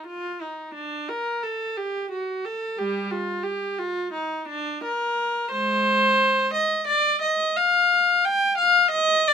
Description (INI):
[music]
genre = classical, baroque-style suite movement for unaccompanied viola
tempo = 88 BPM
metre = 4/4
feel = rubato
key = unclear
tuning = A4 = 445 Hz
[part]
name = warm viola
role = solo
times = 0.0-9.3 s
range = G3 to G5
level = -21 LUFS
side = equal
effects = none
[sound]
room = light reverb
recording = minimal, uncompressed stereo recording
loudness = -21 LUFS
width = side -7 dB against mid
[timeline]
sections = 0.0-9.3 A section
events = none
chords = none